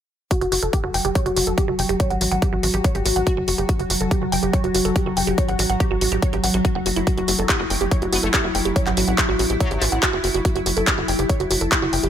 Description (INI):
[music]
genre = psychedelic trance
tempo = 142 BPM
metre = 4/4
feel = straight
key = F# phrygian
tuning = A4 = 440 Hz
[part]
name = evolving wavetable pad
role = sustained chords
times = 0.7-12.1 s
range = F#3 to F#4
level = -25 LUFS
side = equal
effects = chorus, built-in reverb, phaser, sidechain pumping
[part]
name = woody wave-folded pluck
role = riff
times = 0.3-12.1 s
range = E4 to G5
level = -24 LUFS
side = right 1 dB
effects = chorus, auto-pan, sidechain pumping, digital delay
[part]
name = big-room dance drum kit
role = drums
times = 0.3-12.1 s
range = handclaps, hi-hat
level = -23 LUFS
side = equal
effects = overdrive
[part]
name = electronic kick drum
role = drums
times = 0.3-11.8 s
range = none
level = -22 LUFS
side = equal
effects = none
[part]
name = tight sequencer bass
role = bass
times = 0.4-12.1 s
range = F#1 to A1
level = -25 LUFS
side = equal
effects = tube saturation
[part]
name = metallic wobble bass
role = second line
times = 7.5-9.9 s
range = F#3 to B3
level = -32 LUFS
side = left 4 dB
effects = wide subtle chorus, sidechain pumping, high-pass filter, dub echo
[sound]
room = light reverb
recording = none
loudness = -18 LUFS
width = side -9 dB against mid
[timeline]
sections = 0.3-12.1 A section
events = none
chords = 0.3 F#5